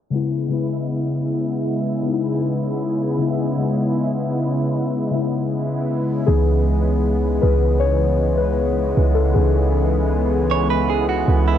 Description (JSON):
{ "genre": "contemporary R&B", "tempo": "78 BPM", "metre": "4/4", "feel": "straight", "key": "C# minor", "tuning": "A4 = 440 Hz", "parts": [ { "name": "muted felt-like synth keys", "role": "accompaniment", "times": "0.1-11.6 s", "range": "C#3 to C#5", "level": "-22 LUFS", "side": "left 6 dB", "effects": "chorus" }, { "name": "lush unison pad", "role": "sustained chords", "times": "0.3-11.6 s", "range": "C#3 to E4", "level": "-23 LUFS", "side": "right 2 dB", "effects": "chorus" }, { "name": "warm 808-style bass", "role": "bass", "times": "6.3-11.6 s", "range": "C#2", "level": "-19 LUFS", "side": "right 2 dB", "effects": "none" }, { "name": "direct-recorded clean electric guitar", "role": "arpeggios", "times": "10.5-11.6 s", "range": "E4 to C#5", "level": "-21 LUFS", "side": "right 11 dB", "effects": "none" } ], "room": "light reverb, digital ambience", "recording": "home recording on cassette, low-pass filter", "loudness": "-17 LUFS", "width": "side -10 dB against mid", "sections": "0.1-6.3 A section; 6.3-11.6 B section", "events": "filter sweep 0.1-6.3; synth keys solo 6.3-11.6", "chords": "0.1 C#m7", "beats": "| 0.12 0.89 1.66 2.43 | 3.20 3.97 4.74 5.51 | 6.28 7.05 7.82 8.59 | 9.36 10.12 10.89" }